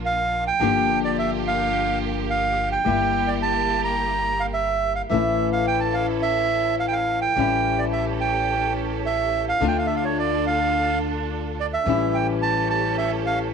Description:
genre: tango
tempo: 107 BPM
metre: 4/4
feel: rubato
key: unclear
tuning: A4 = 444 Hz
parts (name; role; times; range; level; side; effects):
- nylon-string guitar; accompaniment; 0.0-13.5 s; D3 to G4; -26 LUFS; left 12 dB; none
- clear studio string section; stabs; 0.0-13.5 s; Bb3 to A4; -31 LUFS; right 10 dB; none
- upright bass; bass; 0.0-13.5 s; G1 to D2; -30 LUFS; equal; none
- bandoneon; melody; 0.1-13.4 s; C#5 to Bb5; -22 LUFS; right 4 dB; none
room: light reverb, studio ambience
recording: 1960s-style stereo with parts hard left and right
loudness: -20 LUFS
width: side -6 dB against mid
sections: 0.0-13.5 A section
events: none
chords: 0.0 Bb; 0.6 Gm7; 2.9 Edim/G; 5.1 A; 7.4 A7; 9.6 Dm; 11.9 A7

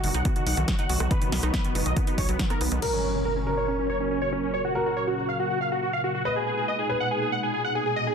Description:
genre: uplifting trance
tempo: 140 BPM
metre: 4/4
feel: straight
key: F# major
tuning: A4 = 439 Hz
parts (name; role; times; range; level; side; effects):
- big supersaw lead; melody; 0.0-8.1 s; B3 to F#5; -28 LUFS; right 1 dB; phaser, sidechain pumping, low-pass filter, dub echo
- lush unison pad; sustained chords; 0.0-8.1 s; A#2 to A#4; -32 LUFS; left 1 dB; chorus, phaser, sidechain pumping
- wide unison pluck; arpeggios; 0.0-2.8 s; D#3 to D#4; -35 LUFS; right 4 dB; sidechain pumping, dub echo
- gritty driven synth bass; bass; 0.0-2.8 s; F#1 to B1; -27 LUFS; equal; tube saturation, sidechain pumping
- punchy analog drum machine; drums; 0.0-2.9 s; crash cymbal, hi-hat, rim click, snare drum; -32 LUFS; equal; overdrive, sidechain pumping on hats, sidechain pumping on cymbals
- electronic kick drum; drums; 0.3-2.5 s; none; -26 LUFS; equal; overdrive
- dark grand piano; second line; 2.8-7.7 s; A#4 to B4; -31 LUFS; equal; vintage 12-bit sampler grit, dub echo
- plucky unison lead; second line; 2.8-8.1 s; C#4 to F#5; -34 LUFS; equal; ensemble chorus, sidechain pumping, dub echo
- impact; sound effects; 2.8-4.5 s; none; -33 LUFS; equal; none
room: moderate digital room reverb, RT60 1.2 s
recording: dense, heavily limited modern master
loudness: -23 LUFS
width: side -6 dB against mid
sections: 0.0-2.8 A section; 2.8-8.1 B section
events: impact 2.8-4.5; filter sweep on supersaw synth 2.8-8.1; filter sweep on analog synth pad 2.8-8.1; filter sweep on digital synth lead 2.8-8.1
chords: 0.0 B; 2.8 F#; 6.3 G#madd9

